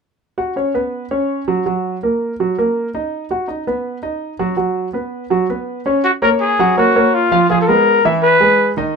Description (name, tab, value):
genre	jazz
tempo	164 BPM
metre	4/4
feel	straight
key	F# major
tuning	A4 = 440 Hz
part	warm concert grand piano	accompaniment	0.4-9.0 s	D#3 to F#5	-16 LUFS	right 2 dB	none
part	growling trumpet	melody	6.0-8.7 s	E#4 to B4	-13 LUFS	left 2 dB	none
room	moderate booth ambience, RT60 0.3 s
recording	minimal, uncompressed stereo recording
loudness	-14 LUFS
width	side -5 dB against mid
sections	0.2-6.0 A section; 6.0-9.0 B section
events	none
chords	0.2 C#7sus4; 1.7 F#; 3.1 B; 4.6 C#7sus4; 6.0 F#maj7; 7.5 Fdim; 8.2 E